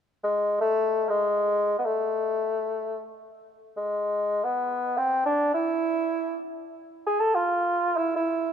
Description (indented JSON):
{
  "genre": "andean folk",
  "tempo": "free time",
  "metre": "none",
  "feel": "none",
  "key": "A harmonic minor",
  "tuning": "A4 = 440 Hz",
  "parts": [
    { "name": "warm bassoon", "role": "melody", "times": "0.2-8.5 s", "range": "G#3 to A4", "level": "-24 LUFS", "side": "equal", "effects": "none" }
  ],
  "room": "moderate plate reverb, RT60 2.9 s",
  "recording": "rough home demo mix",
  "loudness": "-23 LUFS",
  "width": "side -8 dB against mid",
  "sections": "0.0-8.5 A section",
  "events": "none",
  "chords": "none",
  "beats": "free time"
}